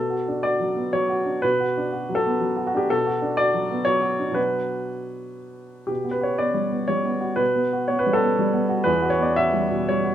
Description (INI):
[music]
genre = neoclassical minimalist piano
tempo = 121 BPM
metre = 3/4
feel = rubato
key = B minor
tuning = A4 = 443 Hz
[part]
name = warm grand piano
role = solo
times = 0.0-10.1 s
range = E2 to E5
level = -20 LUFS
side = equal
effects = none
[sound]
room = moderate studio reverb, RT60 0.8 s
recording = minimal, uncompressed stereo recording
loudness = -20 LUFS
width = side -10 dB against mid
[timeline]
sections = 0.0-10.1 A section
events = none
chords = 0.0 Bm7; 8.9 Emadd9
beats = 0.44 0.93 | 1.43 1.92 2.41 | 2.89 3.38 3.87 | 4.37 4.87 5.38 | 5.89 6.40 6.91 | 7.40 7.90 8.39 | 8.88 9.37 9.88